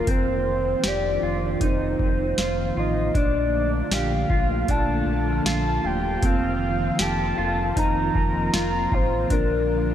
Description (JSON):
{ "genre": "dream pop", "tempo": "78 BPM", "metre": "4/4", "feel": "straight", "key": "F mixolydian", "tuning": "A4 = 438 Hz", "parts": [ { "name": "soft octave-layered synth lead", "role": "melody", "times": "0.0-9.9 s", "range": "Bb4 to Bb5", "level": "-26 LUFS", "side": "equal", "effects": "chorus, phaser, tape echo, slapback echo" }, { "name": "string machine, cellos", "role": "sustained chords", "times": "0.0-9.9 s", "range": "D3 to F4", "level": "-28 LUFS", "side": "right 1 dB", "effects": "ensemble chorus" }, { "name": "mellow electric guitar", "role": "arpeggios", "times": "0.0-9.9 s", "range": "C4 to G4", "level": "-28 LUFS", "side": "left 1 dB", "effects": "lush chorus, tape echo, slapback echo" }, { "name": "sub bass with octave", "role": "bass", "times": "0.0-9.9 s", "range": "Eb1 to Bb1", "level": "-28 LUFS", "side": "equal", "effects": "none" }, { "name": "booming analog drum machine", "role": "drums", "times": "0.1-9.5 s", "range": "hi-hat, kick drum, snare drum", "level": "-24 LUFS", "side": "equal", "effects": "overdrive" } ], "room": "moderate lush hall reverb, RT60 2.8 s", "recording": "big arena sound", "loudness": "-20 LUFS", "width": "side -10 dB against mid", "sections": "0.0-9.9 A section", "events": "none", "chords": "0.1 F7sus4; 3.2 Bbmaj7; 6.2 F7sus4; 9.3 Bb" }